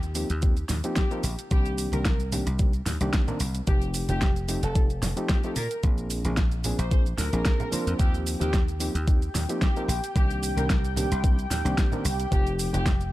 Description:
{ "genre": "nu-disco, nu disco", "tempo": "111 BPM", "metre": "4/4", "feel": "swing 54% on 16ths", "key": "Eb major", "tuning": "A4 = 437 Hz", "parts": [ { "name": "dry thumbed slap bass", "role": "bass", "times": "0.0-13.1 s", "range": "F1 to Bb2", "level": "-28 LUFS", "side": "equal", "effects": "none" }, { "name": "pop drum kit", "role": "drums", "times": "0.0-13.1 s", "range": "hi-hat, shaker, snare drum", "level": "-32 LUFS", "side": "equal", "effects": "overdrive" }, { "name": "overdriven reed electric piano", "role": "accompaniment", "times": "0.2-12.8 s", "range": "Eb3 to C5", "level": "-33 LUFS", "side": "equal", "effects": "sidechain pumping" }, { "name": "electronic kick drum", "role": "drums", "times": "0.4-13.0 s", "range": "none", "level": "-23 LUFS", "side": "equal", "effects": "overdrive" }, { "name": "congas", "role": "percussion", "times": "0.7-12.8 s", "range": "none", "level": "-36 LUFS", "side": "right 2 dB", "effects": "none" }, { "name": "dark studio violin section", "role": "melody", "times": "1.0-12.9 s", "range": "G4 to C5", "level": "-35 LUFS", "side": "left 1 dB", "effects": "tape echo" }, { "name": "lush unison pad", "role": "sustained chords", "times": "8.0-13.1 s", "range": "G4 to G5", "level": "-34 LUFS", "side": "equal", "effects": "chorus, sidechain pumping" } ], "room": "digital ambience", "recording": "none", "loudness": "-23 LUFS", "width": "side -16 dB against mid", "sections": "0.0-13.1 A section", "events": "none", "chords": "0.0 Eb6; 1.5 Cm7; 3.7 F7; 5.6 Bb7; 8.0 Eb6; 10.2 Cm7; 12.3 F7" }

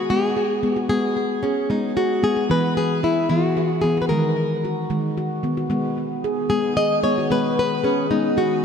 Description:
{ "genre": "world meditative, meditative tuned percussion", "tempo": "75 BPM (dotted quarters)", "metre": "6/8", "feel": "straight", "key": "G# minor", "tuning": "A4 = 440 Hz", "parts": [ { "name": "flamenco guitar", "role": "melody", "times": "0.0-8.6 s", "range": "C#4 to D#5", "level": "-22 LUFS", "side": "left 3 dB", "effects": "ping-pong delay" }, { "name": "handpan", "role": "arpeggios", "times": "0.0-8.6 s", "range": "D#3 to G#4", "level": "-21 LUFS", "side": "right 1 dB", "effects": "ping-pong delay" }, { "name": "soft additive organ-like pad", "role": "sustained chords", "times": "6.0-8.6 s", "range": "D#3 to G#4", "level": "-29 LUFS", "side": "left 1 dB", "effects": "ensemble chorus, built-in reverb" } ], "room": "wet lush hall reverb, RT60 2.7 s", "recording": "dreamy mix soaked in reverb", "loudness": "-19 LUFS", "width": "side -7 dB against mid", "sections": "0.0-8.6 A section", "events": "none", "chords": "0.0 G#m; 2.5 E; 4.1 G#m" }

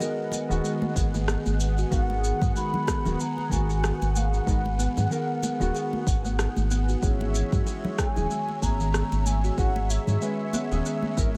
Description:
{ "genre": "organic downtempo", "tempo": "94 BPM", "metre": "4/4", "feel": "swing 56% on 16ths", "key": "G# minor", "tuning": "A4 = 439 Hz", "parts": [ { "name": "mellow bass bansuri", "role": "melody", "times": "0.0-11.4 s", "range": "D#5 to B5", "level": "-36 LUFS", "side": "equal", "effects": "tape echo" }, { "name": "felt-muted upright piano", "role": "accompaniment", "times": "0.0-11.3 s", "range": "D#3 to B4", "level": "-35 LUFS", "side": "equal", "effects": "sidechain pumping, tape echo" }, { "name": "warm analog pad", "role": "sustained chords", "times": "0.0-11.4 s", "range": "G#3 to F#5", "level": "-39 LUFS", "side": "equal", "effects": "chorus, sidechain pumping" }, { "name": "buzzing kalimba", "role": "arpeggios", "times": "0.0-11.0 s", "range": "D#3 to G#4", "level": "-35 LUFS", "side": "equal", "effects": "tape echo" }, { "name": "electronic shaker and rim click", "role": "drums", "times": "0.0-11.3 s", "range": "none", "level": "-36 LUFS", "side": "equal", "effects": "none" }, { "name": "congas", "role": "percussion", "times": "0.3-11.4 s", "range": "none", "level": "-38 LUFS", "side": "equal", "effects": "none" }, { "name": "round analog bass", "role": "bass", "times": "0.5-11.4 s", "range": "D#1 to G#2", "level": "-28 LUFS", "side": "equal", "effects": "sidechain pumping" }, { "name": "electronic kick drum", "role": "drums", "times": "1.0-11.3 s", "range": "none", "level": "-29 LUFS", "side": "equal", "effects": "none" } ], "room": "light reverb, small room ambience", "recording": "echo-heavy mix", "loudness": "-26 LUFS", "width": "mono", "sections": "0.0-11.4 A section", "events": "none", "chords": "0.0 G#m7; 7.0 C#m" }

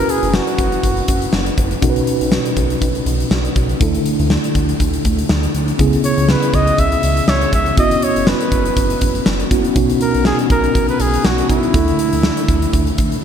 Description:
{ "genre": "1980s-style pop", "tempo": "121 BPM", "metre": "4/4", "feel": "swing 55% on 16ths", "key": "unclear", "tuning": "A4 = 440 Hz", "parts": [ { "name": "warm flugelhorn", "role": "melody", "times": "0.0-1.3, 6.0-13.2 s", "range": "E4 to E5", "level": "-20 LUFS", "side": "equal", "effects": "shimmer reverb, ping-pong delay" }, { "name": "mellow tine electric piano", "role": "accompaniment", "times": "0.0-13.2 s", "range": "B2 to B4", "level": "-18 LUFS", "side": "equal", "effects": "medium stereo tremolo, shimmer reverb" }, { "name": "chorused synth bass", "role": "bass", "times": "0.0-13.2 s", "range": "F#1 to D2", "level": "-20 LUFS", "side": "equal", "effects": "none" }, { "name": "huge arena drum kit", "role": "drums", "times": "0.1-13.2 s", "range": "hi-hat, kick drum, snare drum", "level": "-18 LUFS", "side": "equal", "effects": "none" } ], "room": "moderate plate reverb, RT60 2.3 s", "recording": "bright 1980s-style digital production", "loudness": "-13 LUFS", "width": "side -8 dB against mid", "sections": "0.0-13.2 A section", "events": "none", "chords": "0.0 F#7sus4; 1.8 Badd9; 3.8 Dsus2; 5.8 C#m7; 7.8 F#7sus4; 9.8 Badd9; 11.7 Dsus2" }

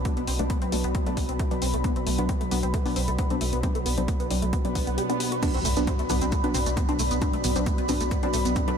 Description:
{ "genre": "driving peak-time techno", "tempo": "134 BPM", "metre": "4/4", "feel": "straight", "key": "B phrygian", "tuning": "A4 = 442 Hz", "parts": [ { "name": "saturated sub bass", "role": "bass", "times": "0.0-8.6 s", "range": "B1", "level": "-30 LUFS", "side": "equal", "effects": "overdrive, sidechain pumping, low-pass filter" }, { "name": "analog drone", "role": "drone", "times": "0.0-8.8 s", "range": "B2 to F#3", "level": "-34 LUFS", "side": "right 1 dB", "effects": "chorus, sidechain pumping" }, { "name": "deep dark ambient pad", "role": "texture", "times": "0.0-8.8 s", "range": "B3 to B5", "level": "-31 LUFS", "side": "equal", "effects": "chorus, built-in reverb, sidechain pumping" }, { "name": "tight sequenced synth", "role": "riff", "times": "0.1-8.7 s", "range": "A3 to G4", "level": "-32 LUFS", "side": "equal", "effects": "chorus, phaser, overdrive, sidechain pumping, tape echo" }, { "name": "filtered dub chord stab", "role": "stabs", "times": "0.1-8.7 s", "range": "F#3 to D4", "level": "-32 LUFS", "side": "equal", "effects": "phaser, lush chorus, sidechain pumping, tape echo" }, { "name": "electronic kick drum", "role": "drums", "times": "0.1-8.7 s", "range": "none", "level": "-28 LUFS", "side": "equal", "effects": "overdrive" }, { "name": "punchy analog drum machine", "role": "drums", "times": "0.1-8.8 s", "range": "crash cymbal, hi-hat, shaker, toms", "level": "-33 LUFS", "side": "left 1 dB", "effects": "overdrive" }, { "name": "swell and impact", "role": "sound effects", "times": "4.7-7.2 s", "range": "none", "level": "-36 LUFS", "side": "equal", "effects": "none" } ], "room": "moderate huge ambient reverb, RT60 8.8 s", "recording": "dreamy mix soaked in reverb", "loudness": "-23 LUFS", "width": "side -7 dB against mid", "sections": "0.0-5.4 A section; 5.4-8.8 B section", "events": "swell 4.7-5.4; drop 5.4-8.8; impact 5.4-7.2", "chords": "0.0 Bm" }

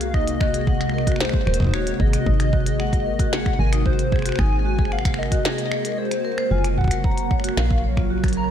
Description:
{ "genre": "IDM", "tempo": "113 BPM", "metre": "4/4", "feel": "straight", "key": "unclear", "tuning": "A4 = 440 Hz", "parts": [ { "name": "warbly nostalgic lead", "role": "melody", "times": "0.0-8.5 s", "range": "C5 to Bb5", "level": "-27 LUFS", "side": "left 1 dB", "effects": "analog chorus, vintage 12-bit sampler grit, analog delay" }, { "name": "glassy FM pad", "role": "sustained chords", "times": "0.0-8.5 s", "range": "C3 to Db5", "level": "-26 LUFS", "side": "right 1 dB", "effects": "ensemble chorus, built-in reverb" }, { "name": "vibraphone with medium hard mallets", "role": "arpeggios", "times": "0.0-8.4 s", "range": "Eb4 to Bb5", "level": "-29 LUFS", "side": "left 4 dB", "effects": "ping-pong delay" }, { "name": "woody FM bass", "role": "bass", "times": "0.0-8.5 s", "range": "Eb1 to C2", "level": "-24 LUFS", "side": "equal", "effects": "none" }, { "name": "glitchy drum kit", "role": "drums", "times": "0.0-8.4 s", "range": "finger snaps, hi-hat, snare drum", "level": "-30 LUFS", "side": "equal", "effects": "ping-pong delay" }, { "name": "electronic kick drum", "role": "drums", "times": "0.1-8.3 s", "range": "none", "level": "-22 LUFS", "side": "equal", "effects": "none" }, { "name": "pulsing gated texture", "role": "texture", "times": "7.1-8.5 s", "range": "Bb3 to Bb4", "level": "-34 LUFS", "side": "right 7 dB", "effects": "none" } ], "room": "light reverb", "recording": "none", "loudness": "-18 LUFS", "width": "side -9 dB against mid", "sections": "0.0-8.5 A section", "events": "break 5.5-6.5", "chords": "0.0 Ab9; 6.5 Gbmaj7" }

